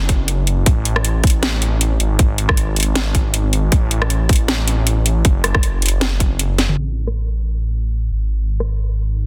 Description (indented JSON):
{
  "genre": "future bass",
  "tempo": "157 BPM",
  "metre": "4/4",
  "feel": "swing 56% on 16ths, half-time",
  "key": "unclear",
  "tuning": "A4 = 440 Hz",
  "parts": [
    { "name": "detuned saw bass", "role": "bass", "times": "0.0-9.3 s", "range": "F#1 to A1", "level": "-20 LUFS", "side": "equal", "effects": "chorus, sidechain pumping" },
    { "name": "electronic kick drum", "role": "drums", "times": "0.1-6.3 s", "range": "none", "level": "-17 LUFS", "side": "equal", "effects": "none" },
    { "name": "trap drum kit", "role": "drums", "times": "0.1-8.7 s", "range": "hi-hat, rim click, snare drum, toms", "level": "-23 LUFS", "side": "equal", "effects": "none" }
  ],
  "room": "little or no reverb",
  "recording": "dense, heavily limited modern master, low-pass filter",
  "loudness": "-17 LUFS",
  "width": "mono",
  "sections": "0.0-6.8 A section; 6.8-9.3 B section",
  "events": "drop 0.0-6.8; drum fill 6.6; filter sweep 6.8-9.3",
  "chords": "none"
}